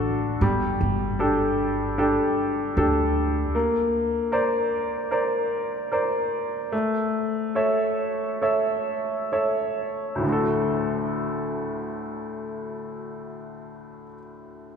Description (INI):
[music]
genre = acoustic folk-pop ballad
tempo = 64-77 BPM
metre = 4/4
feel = straight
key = D major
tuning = A4 = 439 Hz
[part]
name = bright upright piano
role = melody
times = 0.0-14.8 s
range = D2 to E5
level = -23 LUFS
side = equal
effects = none
[part]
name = upright bass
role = bass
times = 0.0-3.4 s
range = G1 to D2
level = -27 LUFS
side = right 1 dB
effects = none
[sound]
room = wet church reverb, RT60 3.3 s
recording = recorded in a church or concert hall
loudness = -22 LUFS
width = side -6 dB against mid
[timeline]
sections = 0.0-10.2 A section; 10.2-13.9 B section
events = slowing down 3.5-10.2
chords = 0.4 Gsus2; 3.5 Bbadd9; 6.7 A; 10.2 D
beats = | 0.41 1.20 1.98 2.76 | 3.54 4.32 5.11 5.91 | 6.73 7.56 8.42 9.32 | 10.24 11.17 12.09 13.02